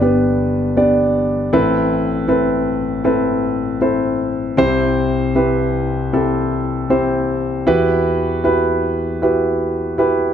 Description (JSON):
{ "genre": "pop", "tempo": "78 BPM", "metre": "4/4", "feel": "straight", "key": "unclear", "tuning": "A4 = 441 Hz", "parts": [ { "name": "dark grand piano", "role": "solo", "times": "0.0-10.3 s", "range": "G1 to D5", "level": "-15 LUFS", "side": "equal", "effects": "none" } ], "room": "moderate recital hall reverb, RT60 1.6 s", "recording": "dark, warm production", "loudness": "-15 LUFS", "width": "side -9 dB against mid", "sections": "0.0-10.3 A section", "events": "none", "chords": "0.0 G; 1.5 Amadd9; 4.6 C; 7.7 Emadd9", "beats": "0.02 0.78 | 1.53 2.29 3.05 3.81 | 4.58 5.35 6.12 6.90 | 7.67 8.45 9.22 9.99" }